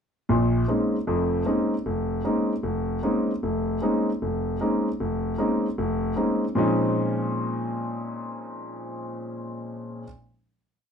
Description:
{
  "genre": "jazz",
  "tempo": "153 BPM",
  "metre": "4/4",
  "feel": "swing 66% on 8ths",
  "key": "Bb minor",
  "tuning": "A4 = 440 Hz",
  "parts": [
    { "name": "warm concert grand piano", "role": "solo", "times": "0.3-10.1 s", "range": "F1 to Eb4", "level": "-24 LUFS", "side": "equal", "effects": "none" }
  ],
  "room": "moderate club reverb, RT60 0.5 s",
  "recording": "dark, warm production",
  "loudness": "-23 LUFS",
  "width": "side -7 dB against mid",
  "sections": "0.3-6.6 A section; 6.6-9.7 final chord",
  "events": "none",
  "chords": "0.3 Bbm11",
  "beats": "| 0.28 0.68 1.07 1.46 | 1.86 2.25 2.64 3.03 | 3.43 3.82 4.21 4.60 | 4.99 5.38 5.78 6.17 | 6.56 6.95 7.34 7.73 | 8.12 8.51 8.90 9.29"
}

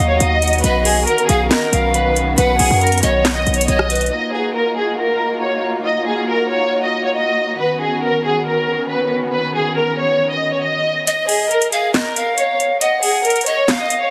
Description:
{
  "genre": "hip hop, trap",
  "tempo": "138 BPM",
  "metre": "4/4",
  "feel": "half-time",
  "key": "unclear",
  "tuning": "A4 = 441 Hz",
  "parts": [
    { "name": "warm studio violin section", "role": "melody", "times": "0.0-14.1 s", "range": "Ab4 to Eb5", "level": "-20 LUFS", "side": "equal", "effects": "low-pass filter" },
    { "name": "bright polished pan flute", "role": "second line", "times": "0.0-4.1, 11.1-14.1 s", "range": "B4 to F#5", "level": "-22 LUFS", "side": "equal", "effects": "delay" },
    { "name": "dark symphonic string section", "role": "sustained chords", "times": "0.0-11.0 s", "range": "D#3 to Gb4", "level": "-25 LUFS", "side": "equal", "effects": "none" },
    { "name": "hard-hitting 808-style bass", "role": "bass", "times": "0.0-4.1 s", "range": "B1 to F#2", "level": "-21 LUFS", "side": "equal", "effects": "none" },
    { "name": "trap drum kit", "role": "drums", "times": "0.2-4.1, 11.1-14.0 s", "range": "handclaps, hi-hat, rim click, snare drum", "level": "-21 LUFS", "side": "equal", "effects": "overdrive" }
  ],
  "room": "light reverb, small room ambience",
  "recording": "heavily compressed radio sound, multiband compression, lossy compression artefacts",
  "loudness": "-17 LUFS",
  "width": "mono",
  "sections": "0.0-4.1 A section; 4.1-11.1 B section; 11.1-14.1 C section",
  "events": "kick muted 11.1-14.1",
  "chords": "0.0 Ebmadd9; 0.6 Badd9; 4.1 Ebmadd9; 7.6 Badd9; 11.1 N.C.",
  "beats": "0.20 | 0.64 1.07 1.51 1.94 | 2.38 2.81 3.25 3.68 | 4.12 4.55 4.99 5.42 | 5.86 6.29 6.73 7.16 | 7.59 8.03 8.46 8.90 | 9.33 9.77 10.20 10.64 | 11.07 11.51 11.94 12.38 | 12.81 13.25 13.68"
}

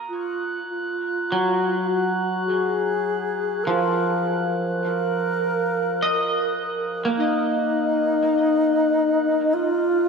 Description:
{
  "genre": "ambient",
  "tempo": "51 BPM",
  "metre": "3/4",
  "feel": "straight",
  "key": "Eb minor",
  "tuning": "A4 = 440 Hz",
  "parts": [
    { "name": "electric guitar at the edge of break-up", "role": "arpeggios", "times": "0.0-10.1 s", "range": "F3 to Eb5", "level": "-25 LUFS", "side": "equal", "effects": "lush chorus, tape echo" },
    { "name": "glass harmonica", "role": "texture", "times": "0.0-10.1 s", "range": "Eb6 to Gb6", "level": "-33 LUFS", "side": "right 1 dB", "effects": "none" },
    { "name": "reedy wooden-headed alto flute", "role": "melody", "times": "0.1-10.1 s", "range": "Eb4 to Bb4", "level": "-22 LUFS", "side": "equal", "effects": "tape echo" }
  ],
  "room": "wet lush hall reverb, RT60 2.5 s",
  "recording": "none",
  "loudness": "-20 LUFS",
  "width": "side -5 dB against mid",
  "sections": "0.0-10.1 A section",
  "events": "fade-out on glass harmonica 0.0-10.1",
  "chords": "0.0 Ebm",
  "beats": "| 0.10 1.27 2.45 | 3.63 4.80 5.98 | 7.16 8.33 9.51"
}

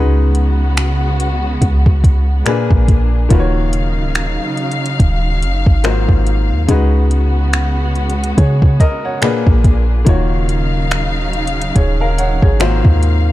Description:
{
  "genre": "contemporary R&B",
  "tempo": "71 BPM",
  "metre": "4/4",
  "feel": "swing 58% on 16ths",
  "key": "Eb minor",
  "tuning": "A4 = 440 Hz",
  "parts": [
    { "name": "clear grand piano", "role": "accompaniment", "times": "0.0-13.3 s", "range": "Ab2 to Gb5", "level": "-19 LUFS", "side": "left 3 dB", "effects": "none" },
    { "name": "warm studio string section", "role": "sustained chords", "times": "0.0-13.3 s", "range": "Bb2 to F5", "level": "-21 LUFS", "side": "equal", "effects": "none" },
    { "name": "warm 808-style bass", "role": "bass", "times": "0.0-13.3 s", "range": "Db1 to Db3", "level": "-14 LUFS", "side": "equal", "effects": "none" },
    { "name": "smooth R&B drum kit", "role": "drums", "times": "0.3-13.3 s", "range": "finger snaps, hi-hat, kick drum", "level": "-14 LUFS", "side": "equal", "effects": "none" }
  ],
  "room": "small room ambience",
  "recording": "dark, warm production",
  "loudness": "-12 LUFS",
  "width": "side -15 dB against mid",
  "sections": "0.0-13.3 A section",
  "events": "none",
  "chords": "0.0 Db7sus4; 2.5 Bb7b9; 3.3 Ebm9; 5.8 Ab13; 6.7 Db7sus4; 9.2 Bb7b9; 10.1 Ebm9; 12.6 Ab13",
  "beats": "0.77 1.61 2.46 | 3.31 4.15 5.00 5.84 | 6.69 7.53 8.38 9.22 | 10.07 10.91 11.76 12.60"
}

